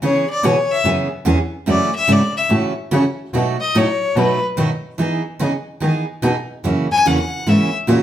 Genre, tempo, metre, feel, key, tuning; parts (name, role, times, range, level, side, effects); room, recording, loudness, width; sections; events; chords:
country, western swing; 145 BPM; 4/4; swing 65% on 8ths; A4 = 440 Hz
clear fiddle; melody; 0.0-7.7 s; B4 to G#5; -18 LUFS; left 3 dB
picked steel-string acoustic guitar; accompaniment; 0.0-8.0 s; B2 to G#4; -21 LUFS; right 3 dB
dark cello; bass; 0.0-8.0 s; E2 to E3; -18 LUFS; equal
moderate large studio reverb, RT60 0.8 s; band playing live in one room; -15 LUFS; side -11 dB against mid
0.0-8.0 A section
fiddle solo 0.0-8.0
0.0 C#m7; 1.7 F#m7; 3.3 B7; 5.0 Emaj7; 6.6 F#7